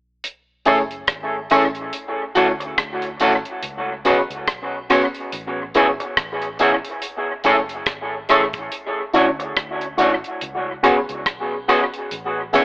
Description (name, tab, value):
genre	lovers rock reggae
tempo	71 BPM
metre	4/4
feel	swing 58% on 16ths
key	F# minor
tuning	A4 = 440 Hz
part	deep reggae drum kit	drums	0.2-12.6 s	hi-hat, kick drum, rim click	-24 LUFS	equal	dub echo
part	tine electric piano	accompaniment	0.7-12.6 s	A3 to G#4	-22 LUFS	equal	phaser, dub echo
part	electric guitar through a small old amp	stabs	0.7-12.6 s	D4 to C#5	-20 LUFS	equal	dub echo
part	vintage muted fingered electric bass	bass	0.7-12.6 s	F#1 to D2	-40 LUFS	equal	none
part	tambourine and woodblock	percussion	0.7-12.6 s	none	-25 LUFS	equal	none
room	light reverb, small room ambience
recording	telephone sound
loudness	-17 LUFS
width	side -23 dB against mid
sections	0.2-12.6 A section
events	none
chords	0.2 F#m7; 1.9 Dmaj7; 3.6 C#7sus4; 5.3 Amaj7; 7.0 F#m7; 8.7 Dmaj7; 10.4 C#7sus4; 12.1 Amaj7